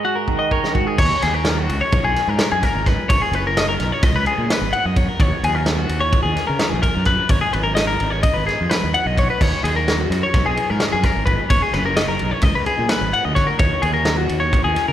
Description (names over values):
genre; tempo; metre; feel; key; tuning
math rock and midwest emo; 257 BPM (eighths); 9/8; straight; unclear; A4 = 440 Hz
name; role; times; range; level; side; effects
twangy electric guitar; accompaniment; 0.0-1.0 s; G#2 to C#5; -25 LUFS; right 7 dB; none
twelve-string electric guitar; arpeggios; 0.0-14.9 s; F#4 to F#5; -20 LUFS; left 3 dB; none
loose indie drum kit; drums; 0.3-14.9 s; crash cymbal, kick drum, ride cymbal, snare drum; -20 LUFS; equal; none
fuzz fingered electric bass; bass; 1.0-14.9 s; F#1 to C#3; -22 LUFS; right 1 dB; overdrive
room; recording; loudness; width
moderate church reverb, RT60 3.3 s; recorded in a church or concert hall; -16 LUFS; side -11 dB against mid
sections
1.0-14.9 A section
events
break 0.0-1.0; drum fill 0.3-1.0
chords
0.0 G#m9; 1.0 D#m7; 1.9 N.C.; 3.1 F#add9; 4.0 C#9sus4; 5.2 D#m7; 7.3 G#m; 9.4 D#m7; 10.3 N.C.; 11.5 F#69; 12.4 C#9sus4; 13.6 D#m7